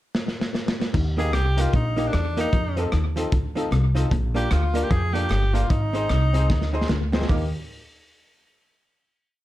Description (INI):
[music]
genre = ska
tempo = 151 BPM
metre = 4/4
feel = swing 60% on 8ths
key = Eb major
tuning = A4 = 442 Hz
[part]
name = crunchy breakbeat drum kit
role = drums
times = 0.1-7.4 s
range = crash cymbal, hi-hat, kick drum, rim click, snare drum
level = -26 LUFS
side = equal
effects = slapback echo
[part]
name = clean electric guitar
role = riff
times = 0.9-7.0 s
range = G2 to F3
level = -32 LUFS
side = left 4 dB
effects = slapback echo
[part]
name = upright bass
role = bass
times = 0.9-7.5 s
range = G1 to F2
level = -23 LUFS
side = equal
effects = none
[part]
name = breathy tenor saxophone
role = melody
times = 1.2-6.9 s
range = D4 to Ab4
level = -27 LUFS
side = left 1 dB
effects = slapback echo, plate reverb
[part]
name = archtop guitar, miked and amplified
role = accompaniment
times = 1.2-7.4 s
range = F3 to C5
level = -31 LUFS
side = right 3 dB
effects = plate reverb
[part]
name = bright upright piano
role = stabs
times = 1.2-7.5 s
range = Bb3 to C5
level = -32 LUFS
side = left 4 dB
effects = plate reverb
[part]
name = group handclap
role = percussion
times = 4.5-7.5 s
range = none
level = -43 LUFS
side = right 6 dB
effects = none
[sound]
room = light reverb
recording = dark, warm production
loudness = -20 LUFS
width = side -15 dB against mid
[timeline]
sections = 0.0-0.9 pickup bar; 0.9-7.3 head; 7.3-8.9 final chord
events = drum fill 0.1-0.9, 6.5-7.3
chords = 0.0 N.C.; 0.9 Eb; 2.5 F7; 4.1 Bb; 5.7 Ab; 7.3 Eb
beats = 0.15 0.54 | 0.94 1.34 1.73 2.13 | 2.53 2.92 3.32 3.72 | 4.12 4.51 4.91 5.31 | 5.71 6.10 6.50 6.89 | 7.29